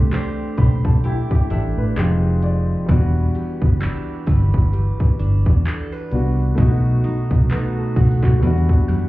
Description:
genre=contemporary R&B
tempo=65 BPM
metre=4/4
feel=swing 58% on 16ths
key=E minor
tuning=A4 = 439 Hz
part: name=warm grand piano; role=accompaniment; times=0.0-9.1 s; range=G3 to B5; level=-26 LUFS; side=left 3 dB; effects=none
part: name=picked steel-string acoustic guitar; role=arpeggios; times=0.0-9.1 s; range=B2 to C5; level=-24 LUFS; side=right 2 dB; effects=ping-pong delay
part: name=vintage muted fingered electric bass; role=bass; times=0.0-9.1 s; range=E1 to A2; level=-18 LUFS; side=equal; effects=none
part: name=trap drum kit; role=drums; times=0.1-9.1 s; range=handclaps, hi-hat, kick drum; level=-17 LUFS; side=equal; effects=none
part: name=mallet-like synth pluck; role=texture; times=0.6-9.1 s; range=B5 to F#6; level=-44 LUFS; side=right 1 dB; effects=none
room=little or no reverb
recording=heard muffled through a wall, club reverb, EQ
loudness=-16 LUFS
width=side -18 dB against mid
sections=0.0-9.1 A section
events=grand piano fill 0.1-2.9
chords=0.0 Am11; 2.0 Fm7; 2.9 Em7; 6.6 B7; 8.4 Em9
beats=0.12 1.04 1.96 | 2.89 3.81 4.73 5.66 | 6.58 7.50 8.43

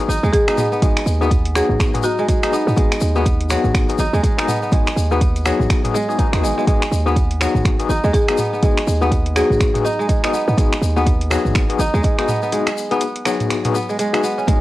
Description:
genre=afro house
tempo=123 BPM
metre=4/4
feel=swing 60% on 16ths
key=G# minor pentatonic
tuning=A4 = 437 Hz
part: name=kora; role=arpeggios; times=0.0-14.6 s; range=F#3 to G#4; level=-22 LUFS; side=right 2 dB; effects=sidechain pumping, cassette tape, analog delay
part: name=overdriven tine electric piano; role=stabs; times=0.0-14.6 s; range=B3 to G#4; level=-23 LUFS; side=left 5 dB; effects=medium tremolo, sidechain pumping, cassette tape, analog delay
part: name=warm 808-style bass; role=bass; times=0.1-14.6 s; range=G#1 to G#2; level=-19 LUFS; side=right 1 dB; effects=sidechain pumping
part: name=tube shaker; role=percussion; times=0.1-14.6 s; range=none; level=-34 LUFS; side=left 7 dB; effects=none
part: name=marimba with medium mallets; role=melody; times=0.3-3.2, 8.1-9.5 s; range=D#4 to G#4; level=-22 LUFS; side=equal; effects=cassette tape, analog delay
part: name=afro-pop drum kit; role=drums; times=0.3-14.6 s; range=finger snaps, hi-hat, toms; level=-24 LUFS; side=right 1 dB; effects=cassette tape
part: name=electronic kick drum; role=drums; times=0.3-14.6 s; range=none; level=-17 LUFS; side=right 1 dB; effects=cassette tape
part: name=congas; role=percussion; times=14.5-14.6 s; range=none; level=-25 LUFS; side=left 7 dB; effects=none
room=light reverb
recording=home recording on cassette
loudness=-15 LUFS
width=side -16 dB against mid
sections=0.0-14.6 A section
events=break 12.5-14.5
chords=0.0 G#m7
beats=0.33 | 0.82 1.31 1.80 2.28 | 2.77 3.26 3.75 4.24 | 4.72 5.21 5.70 6.19 | 6.67 7.16 7.65 8.14 | 8.62 9.11 9.60 10.09 | 10.58 11.06 11.55 12.04 | 12.53 13.02 13.50 13.99 | 14.48

